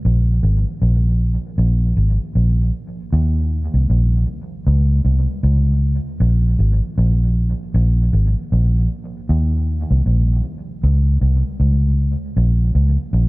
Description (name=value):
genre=reggae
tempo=78 BPM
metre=4/4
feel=swing 60% on 16ths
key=unclear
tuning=A4 = 441 Hz
part: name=vintage muted fingered electric bass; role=solo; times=0.0-13.3 s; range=Ab1 to Eb2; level=-15 LUFS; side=equal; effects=none
room=light reverb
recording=echo-heavy mix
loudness=-15 LUFS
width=side -22 dB against mid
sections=0.0-12.4 A section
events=none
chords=none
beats=| 0.04 0.81 1.58 2.35 | 3.12 3.89 4.66 5.43 | 6.20 6.97 7.74 8.51 | 9.28 10.05 10.82 11.59 | 12.36 13.13